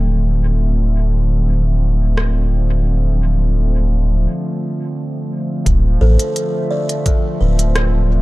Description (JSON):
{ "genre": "ambient dub", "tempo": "86 BPM", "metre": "4/4", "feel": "straight", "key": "D dorian", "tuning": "A4 = 440 Hz", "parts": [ { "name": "warbly tape-like pad", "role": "sustained chords", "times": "0.0-8.2 s", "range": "D3 to E5", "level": "-22 LUFS", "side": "equal", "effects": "chorus, built-in reverb" }, { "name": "soft dub sub bass", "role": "bass", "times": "0.0-8.2 s", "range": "D1 to A1", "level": "-14 LUFS", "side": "equal", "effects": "tube saturation" }, { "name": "organic electronic drum kit", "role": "drums", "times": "2.2-7.9 s", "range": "hi-hat, rim click", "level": "-24 LUFS", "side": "equal", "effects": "overdrive, dub echo" }, { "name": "electronic kick drum", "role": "drums", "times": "5.7-7.2 s", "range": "none", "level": "-16 LUFS", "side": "equal", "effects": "none" }, { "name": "buzzing kalimba", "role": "arpeggios", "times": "6.0-8.2 s", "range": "A4 to D5", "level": "-23 LUFS", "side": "equal", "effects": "tape echo" } ], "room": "little or no reverb", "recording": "dark, warm production", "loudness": "-14 LUFS", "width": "side -19 dB against mid", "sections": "0.0-5.7 A section; 5.7-8.2 B section", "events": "break 4.3-5.7", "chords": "0.0 Dm7" }